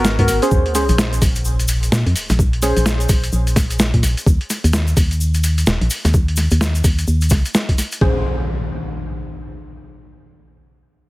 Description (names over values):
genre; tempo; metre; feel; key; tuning
UK garage, two-step garage; 128 BPM; 4/4; swing 61% on 16ths; Bb minor; A4 = 441 Hz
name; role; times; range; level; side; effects
deep mellow chord stab; stabs; 0.0-2.8, 8.0-8.2 s; Cb4 to C5; -21 LUFS; equal; chorus, tape echo
organ-like FM bass; bass; 0.0-8.2 s; Eb1 to Bb2; -17 LUFS; equal; sidechain pumping
boom bap sampler-style drum kit; drums; 0.0-8.0 s; hi-hat, snare drum; -21 LUFS; equal; overdrive
cabasa; percussion; 0.0-8.0 s; none; -27 LUFS; left 2 dB; none
electronic kick drum; drums; 0.2-8.1 s; none; -16 LUFS; equal; overdrive
sub drop and impact; sound effects; 0.6-2.4, 8.0-9.9 s; none; -25 LUFS; equal; none
room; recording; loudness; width
digital ambience; heavily compressed radio sound, multiband compression; -14 LUFS; side -19 dB against mid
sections
0.5-8.0 A section; 8.0-9.9 B section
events
impact 0.5-2.4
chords
0.0 Abm9; 0.5 Bbm9; 4.3 Eb5; 8.0 Bbm9